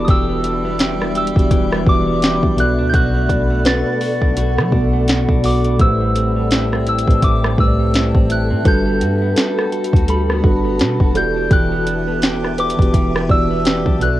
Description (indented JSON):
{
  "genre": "contemporary R&B",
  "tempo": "84 BPM",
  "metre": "4/4",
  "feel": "swing 58% on 16ths",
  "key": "unclear",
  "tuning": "A4 = 440 Hz",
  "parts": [
    { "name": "soft synth bell", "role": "melody", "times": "0.0-14.2 s", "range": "B5 to A6", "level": "-23 LUFS", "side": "equal", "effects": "chorus, phaser, cassette tape, analog delay" },
    { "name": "mellow tine electric piano", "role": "accompaniment", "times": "0.0-14.2 s", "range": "A2 to D5", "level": "-20 LUFS", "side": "right 1 dB", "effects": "fast stereo tremolo, cassette tape" },
    { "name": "granular cloud pad", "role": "sustained chords", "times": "0.0-14.2 s", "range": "G3 to D6", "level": "-25 LUFS", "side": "equal", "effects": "built-in reverb, cassette tape" },
    { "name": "direct-recorded clean electric guitar", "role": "arpeggios", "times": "0.0-14.2 s", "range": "A2 to A4", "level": "-24 LUFS", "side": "left 3 dB", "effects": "cassette tape" },
    { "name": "warm 808-style bass", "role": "bass", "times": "0.0-14.2 s", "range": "E1 to F#3", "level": "-21 LUFS", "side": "equal", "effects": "none" },
    { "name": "smooth R&B drum kit", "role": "drums", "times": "0.1-14.2 s", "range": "hi-hat, kick drum, rim click, snare drum", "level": "-17 LUFS", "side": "equal", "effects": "overdrive, cassette tape" },
    { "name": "kalimba", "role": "texture", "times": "3.7-14.2 s", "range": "A4 to D5", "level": "-28 LUFS", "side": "right 2 dB", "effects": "cassette tape, analog delay" }
  ],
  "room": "light reverb",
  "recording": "home recording on cassette",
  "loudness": "-13 LUFS",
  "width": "side -14 dB against mid",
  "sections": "0.0-14.2 A section",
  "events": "none",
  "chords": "0.0 Em7; 2.6 Bm7; 5.8 Am7; 8.7 Em7"
}